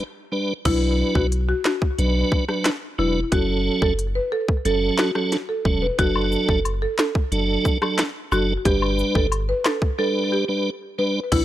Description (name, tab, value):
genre	dancehall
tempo	90 BPM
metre	4/4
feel	straight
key	B minor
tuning	A4 = 443 Hz
part	tonewheel organ	accompaniment	0.0-11.4 s	F#3 to B4	-23 LUFS	right 2 dB	chorus vibrato
part	buzzing marimba with medium mallets	melody	0.7-11.4 s	E4 to B4	-25 LUFS	equal	analog delay
part	punchy sub bass	bass	0.7-11.4 s	E1 to B1	-24 LUFS	equal	none
part	island pop drum kit	drums	0.7-11.4 s	crash cymbal, handclaps, hi-hat, kick drum, rim click, snare drum	-22 LUFS	equal	overdrive
part	woodblock and cabasa	percussion	6.2-9.8 s	none	-29 LUFS	left 6 dB	none
room	little or no reverb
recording	dry, gritty hardware recording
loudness	-19 LUFS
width	side -13 dB against mid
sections	0.7-11.3 A section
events	break 10.0-11.3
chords	0.0 G; 0.7 Bm; 3.3 F#m; 6.0 D/F#; 8.7 G